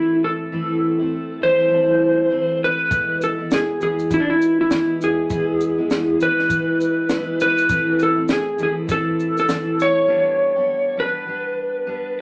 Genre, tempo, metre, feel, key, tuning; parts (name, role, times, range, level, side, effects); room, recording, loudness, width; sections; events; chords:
acoustic pop; 100 BPM; 4/4; swing 60% on 16ths; A harmonic minor; A4 = 439 Hz
electric slide guitar; melody; 0.0-12.1 s; D4 to C#5; -21 LUFS; equal
fingerpicked steel-string acoustic guitar; accompaniment; 0.0-12.2 s; E3 to G4; -25 LUFS; equal
compact cocktail drum kit; drums; 2.9-10.0 s; kick drum, shaker, snare drum; -27 LUFS; equal
moderate club reverb, RT60 0.7 s; -19 LUFS; mono
0.0-12.2 A section
0.0 Am; 2.9 E; 7.7 Am; 10.1 G